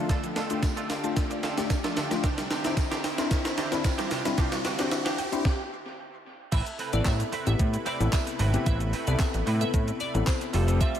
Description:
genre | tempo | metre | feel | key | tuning
dance-pop | 112 BPM | 4/4 | straight | unclear | A4 = 440 Hz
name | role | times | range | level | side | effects
tine electric piano | accompaniment | 0.0-11.0 s | A3 to A4 | -32 LUFS | left 6 dB | lush chorus, sidechain pumping, low-pass filter
lush unison pad | sustained chords | 0.0-11.0 s | C3 to B4 | -36 LUFS | right 1 dB | chorus, sidechain pumping, low-pass filter
mallet-like synth pluck | arpeggios | 0.0-5.4 s | C3 to C6 | -38 LUFS | right 4 dB | chorus, sidechain pumping, low-pass filter, dub echo
riser | sound effects | 0.0-5.5 s | none | -37 LUFS | right 1 dB | none
direct-recorded clean electric guitar | riff | 0.1-11.0 s | E3 to B4 | -37 LUFS | right 5 dB | ensemble chorus, low-pass filter, dub echo
gated 80s digital drum machine | drums | 0.1-11.0 s | crash cymbal, handclaps, hi-hat, kick drum, shaker, snare drum | -28 LUFS | equal | gated reverb, gated reverb snare, dub echo
tambourine | percussion | 0.6-10.4 s | none | -45 LUFS | right 10 dB | none
glassy wavetable pluck | melody | 6.5-10.9 s | C5 to E5 | -35 LUFS | right 1 dB | chorus, sidechain pumping, dub echo
fat analog bass | bass | 6.5-10.8 s | F1 to A2 | -25 LUFS | equal | sidechain pumping
room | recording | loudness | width
light reverb, digital ambience | echo-heavy mix | -24 LUFS | side -10 dB against mid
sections
0.0-6.5 A section; 6.5-11.0 B section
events
build-up 0.0-6.5; drum fill 0.0-5.5; riser 0.0-6.5; stop 5.5-6.5; drop 6.5-11.0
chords
0.0 Dm; 2.2 Cadd9; 6.5 Amadd9

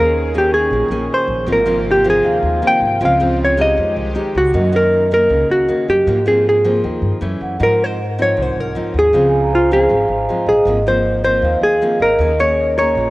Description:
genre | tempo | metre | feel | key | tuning
bossa nova | 157 BPM | 4/4 | straight | unclear | A4 = 439 Hz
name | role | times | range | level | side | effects
hollow-body jazz guitar | melody | 0.0-13.1 s | F4 to G5 | -14 LUFS | equal | cassette tape
nylon-string guitar | accompaniment | 0.0-13.1 s | Gb2 to Ab4 | -22 LUFS | equal | none
brassy analog pad | sustained chords | 0.0-4.5 s | C3 to Ab4 | -28 LUFS | equal | chorus
upright bass | bass | 0.0-13.1 s | Ab1 to Ab2 | -21 LUFS | equal | none
vibraphone with soft mallets | accompaniment | 0.5-13.1 s | C5 to Db6 | -23 LUFS | right 2 dB | none
room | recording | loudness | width
light reverb, small room ambience | home recording on cassette | -13 LUFS | side -19 dB against mid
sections
0.0-4.5 A section; 4.5-13.1 B section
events
hollow-body jazz guitar solo 0.0-4.5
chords
0.0 Eb7sus4; 1.5 Ab69; 3.0 Dbmaj7; 3.8 Fm9; 4.5 Gb6; 6.1 Ab69; 7.2 Gbm7; 7.6 Fm7/Ab; 9.1 Dbmaj7; 10.7 Ab69; 12.2 Eb7sus4

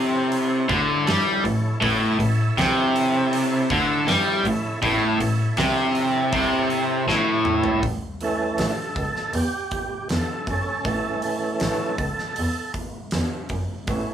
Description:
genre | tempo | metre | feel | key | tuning
blues rock power trio and southern rock | 80 BPM | 4/4 | straight | A mixolydian | A4 = 440 Hz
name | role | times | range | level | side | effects
overdriven tonewheel organ | sustained chords | 0.0-14.1 s | E3 to E5 | -27 LUFS | right 2 dB | chorus vibrato, slow rotary speaker
crunchy overdriven guitar | riff | 0.0-7.8 s | A2 to G3 | -19 LUFS | equal | none
huge arena drum kit | drums | 0.3-14.1 s | hi-hat, kick drum, snare drum, toms | -30 LUFS | equal | none
muted double bass | bass | 0.7-14.0 s | A1 to G2 | -28 LUFS | equal | none
room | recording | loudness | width
moderate studio ambience, RT60 0.5 s | none | -20 LUFS | side -9 dB against mid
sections
0.0-7.8 A section; 7.8-14.1 B section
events
drum fill 7.1-7.8; tonewheel organ solo 7.8-14.1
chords
0.0 A

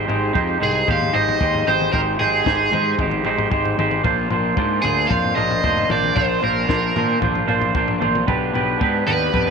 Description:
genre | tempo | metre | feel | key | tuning
indie rock | 114 BPM | 4/4 | straight | unclear | A4 = 440 Hz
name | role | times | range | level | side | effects
electric guitar through a small old amp | riff | 0.0-9.5 s | Ab3 to C5 | -24 LUFS | left 11 dB | spring reverb
twangy electric guitar | riff | 0.0-9.5 s | Ab3 to C5 | -21 LUFS | right 13 dB | lush chorus, slapback echo
fuzz picked electric bass | bass | 0.0-9.5 s | F1 to Bb2 | -25 LUFS | right 2 dB | overdrive
compact cocktail drum kit | drums | 0.1-9.5 s | kick drum, snare drum, toms | -25 LUFS | left 2 dB | none
biting overdriven guitar | melody | 0.6-9.5 s | Ab4 to F5 | -21 LUFS | equal | slapback echo
room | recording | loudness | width
light reverb | 1960s-style stereo with parts hard left and right | -16 LUFS | side -5 dB against mid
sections
0.0-9.5 A section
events
none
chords
0.0 Abmaj7; 4.0 Bbadd9; 8.3 G

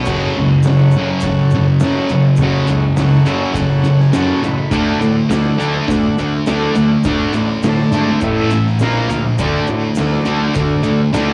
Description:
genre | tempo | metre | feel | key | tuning
garage rock duo or trio | 103 BPM | 4/4 | straight | F# minor | A4 = 440 Hz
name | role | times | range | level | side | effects
combo organ | sustained chords | 0.0-11.3 s | E4 to B5 | -27 LUFS | equal | cassette tape
thick fuzz guitar | riff | 0.0-11.3 s | F#2 to D4 | -16 LUFS | equal | distortion, cassette tape
fuzz picked electric bass | bass | 0.0-11.3 s | F#1 to A2 | -24 LUFS | equal | overdrive
oversized low-tuned drum kit | drums | 0.1-11.3 s | crash cymbal, hi-hat, kick drum, snare drum | -27 LUFS | equal | cassette tape
tube shaker | percussion | 0.1-11.3 s | none | -41 LUFS | equal | none
room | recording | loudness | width
light reverb | home recording on cassette | -15 LUFS | mono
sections
0.1-11.3 A section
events
transistor combo organ fill 3.0-4.7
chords
0.1 F#m; 4.7 D; 8.2 A5; 8.8 A#5; 9.4 D

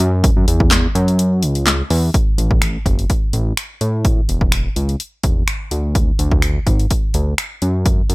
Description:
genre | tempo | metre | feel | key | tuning
dance-pop | 126 BPM | 4/4 | straight | unclear | A4 = 440 Hz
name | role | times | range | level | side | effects
fat analog bass | bass | 0.0-8.1 s | E1 to A2 | -17 LUFS | equal | sidechain pumping
house drum kit | drums | 0.0-8.1 s | finger snaps, handclaps, hi-hat, kick drum, snare drum | -16 LUFS | equal | none
room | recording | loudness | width
little or no reverb | none | -14 LUFS | side -22 dB against mid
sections
0.0-2.1 A section; 2.1-8.1 B section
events
break 1.2-2.1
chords
none

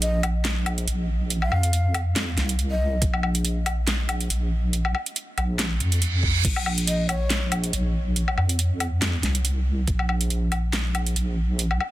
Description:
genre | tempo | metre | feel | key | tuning
deep dubstep | 140 BPM | 4/4 | swing 55% on 16ths, half-time | Bb minor | A4 = 440 Hz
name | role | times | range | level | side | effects
breathy mellow shakuhachi | melody | 0.0-3.0, 6.9-7.5 s | Db5 to F5 | -34 LUFS | left 2 dB | dub echo
deep soft wobble bass | bass | 0.0-11.8 s | Bb1 to F2 | -23 LUFS | equal | chorus, tube saturation
dubstep drum kit | drums | 0.0-11.9 s | crash cymbal, handclaps, hi-hat, snare drum, woodblock | -27 LUFS | equal | none
electronic kick drum | drums | 3.0-3.1, 6.2-6.5, 9.9-10.0 s | none | -24 LUFS | equal | none
reverse cymbal | sound effects | 5.8-6.4 s | none | -29 LUFS | right 6 dB | none
room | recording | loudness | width
little or no reverb | dense, heavily limited modern master | -21 LUFS | side -15 dB against mid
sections
0.0-11.9 A section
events
reverse cymbal 5.8-6.4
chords
0.0 Bb5

